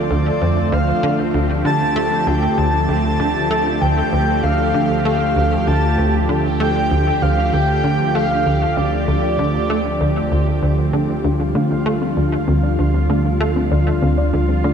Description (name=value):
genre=ambient, sequencer-driven space music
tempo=97 BPM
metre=4/4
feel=straight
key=D minor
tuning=A4 = 440 Hz
part: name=breathy flute-like synth lead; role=melody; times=0.0-10.6 s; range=D5 to A5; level=-21 LUFS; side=equal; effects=tremolo, analog chorus, shimmer reverb, analog delay
part: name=lush unison pad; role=sustained chords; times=0.0-14.7 s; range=D3 to G4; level=-20 LUFS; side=right 1 dB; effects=chorus, shimmer reverb
part: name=fat analog bass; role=bass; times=0.0-14.7 s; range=D2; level=-27 LUFS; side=equal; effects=none
part: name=bubbling stepped-filter texture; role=texture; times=0.0-14.7 s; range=C4 to F5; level=-28 LUFS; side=equal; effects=chorus, built-in reverb, shimmer reverb
part: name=tight sequencer bass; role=riff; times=0.1-14.7 s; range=D2 to A3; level=-19 LUFS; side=equal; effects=wide subtle chorus, cassette tape, shimmer reverb, analog delay
part: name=soft round pluck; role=arpeggios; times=11.2-14.7 s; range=A3 to D5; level=-24 LUFS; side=left 2 dB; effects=chorus, auto-pan, shimmer reverb, analog delay
room=wet plate reverb, RT60 3.1 s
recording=dreamy mix soaked in reverb, cassette tape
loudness=-15 LUFS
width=side -7 dB against mid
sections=0.0-14.7 A section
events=none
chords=0.0 Dm